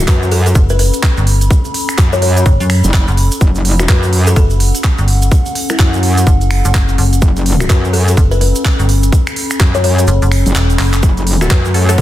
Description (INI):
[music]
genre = bass house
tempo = 126 BPM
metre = 4/4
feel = swing 61% on 16ths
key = F# phrygian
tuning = A4 = 436 Hz
[part]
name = buzzing kalimba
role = melody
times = 0.0-12.0 s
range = E4 to C#5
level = -20 LUFS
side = left 4 dB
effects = digital delay
[part]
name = metallic wobble bass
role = bass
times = 0.0-12.0 s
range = F#1 to F#2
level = -13 LUFS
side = equal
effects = distortion, chorus, sidechain pumping
[part]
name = warbly tape-like pad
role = texture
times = 0.0-12.0 s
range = C#4 to B5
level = -21 LUFS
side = left 2 dB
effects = chorus, built-in reverb, sidechain pumping
[part]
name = electronic kick drum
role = drums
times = 0.1-12.0 s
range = none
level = -13 LUFS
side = equal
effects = none
[part]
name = garage drum kit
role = drums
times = 0.1-12.0 s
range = finger snaps, handclaps, hi-hat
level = -19 LUFS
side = right 1 dB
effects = none
[part]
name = tube shaker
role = percussion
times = 0.1-12.0 s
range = none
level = -26 LUFS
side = right 4 dB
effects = none
[part]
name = metallic FM bass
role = bass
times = 0.6-12.0 s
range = E1 to F#2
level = -12 LUFS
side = equal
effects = overdrive, sidechain pumping
[part]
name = dark analog pad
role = sustained chords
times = 11.4-12.0 s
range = A3 to C#5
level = -26 LUFS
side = right 1 dB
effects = none
[part]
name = band-passed chord stab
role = stabs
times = 11.4-12.0 s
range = A3 to A4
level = -20 LUFS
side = left 1 dB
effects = chorus, sidechain pumping
[sound]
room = little or no reverb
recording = dense, heavily limited modern master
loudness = -9 LUFS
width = side -14 dB against mid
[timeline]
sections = 0.0-12.0 A section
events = kick drops out 10.1-11.0; drum fill 10.8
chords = 0.0 F#m